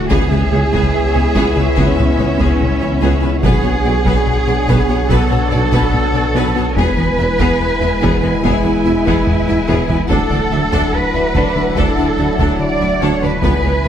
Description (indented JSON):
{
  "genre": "cinematic, hybrid orchestral and electronic film score",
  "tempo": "72 BPM",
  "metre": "4/4",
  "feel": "straight",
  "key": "unclear",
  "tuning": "A4 = 440 Hz",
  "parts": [
    { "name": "rich studio violin section", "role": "melody", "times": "0.0-13.9 s", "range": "E5 to G#5", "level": "-27 LUFS", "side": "left 2 dB", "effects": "none" },
    { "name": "mellow French horn section", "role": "sustained chords", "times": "0.0-13.9 s", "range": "F#3 to E4", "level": "-24 LUFS", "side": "left 3 dB", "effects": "none" },
    { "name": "sweeping resonant pad", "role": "sustained chords", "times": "0.0-13.9 s", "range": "E3 to E5", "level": "-24 LUFS", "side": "equal", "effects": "chorus" },
    { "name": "tight sequenced synth", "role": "arpeggios", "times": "0.0-13.9 s", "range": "C#3 to B4", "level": "-26 LUFS", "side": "left 1 dB", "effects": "none" },
    { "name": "punchy sub bass", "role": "bass", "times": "0.0-13.9 s", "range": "D1 to C#2", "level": "-22 LUFS", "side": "equal", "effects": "none" },
    { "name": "warm symphonic cello section", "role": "bass", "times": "0.0-13.9 s", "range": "C#4 to D5", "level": "-18 LUFS", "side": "right 2 dB", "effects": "none" },
    { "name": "clear symphonic violin section", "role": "second line", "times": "0.1-13.9 s", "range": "G#4 to E5", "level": "-26 LUFS", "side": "left 3 dB", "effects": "none" },
    { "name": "rich studio viola section", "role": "accompaniment", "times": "0.1-13.9 s", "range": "B3 to D4", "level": "-24 LUFS", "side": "right 1 dB", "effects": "none" },
    { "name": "rubbery square bass", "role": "riff", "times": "0.1-13.9 s", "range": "C#2 to B3", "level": "-22 LUFS", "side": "left 3 dB", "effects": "none" },
    { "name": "mellow tuba", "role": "bass", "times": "0.1-13.9 s", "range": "E1 to D2", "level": "-24 LUFS", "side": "right 3 dB", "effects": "none" },
    { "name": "rich symphonic double bass section", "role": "bass", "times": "0.1-13.9 s", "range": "B1 to E2", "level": "-23 LUFS", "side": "right 3 dB", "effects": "none" },
    { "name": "taiko ensemble", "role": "drums", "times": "0.1-13.9 s", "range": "none", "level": "-22 LUFS", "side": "equal", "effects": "none" }
  ],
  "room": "wet concert hall reverb, RT60 2.2 s",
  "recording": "none",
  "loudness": "-12 LUFS",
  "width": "side -9 dB against mid",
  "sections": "0.0-13.9 A section",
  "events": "drum fill 9.3-10.1",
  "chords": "0.1 C#m7; 3.4 Bmadd9; 6.8 E; 10.1 Dadd9"
}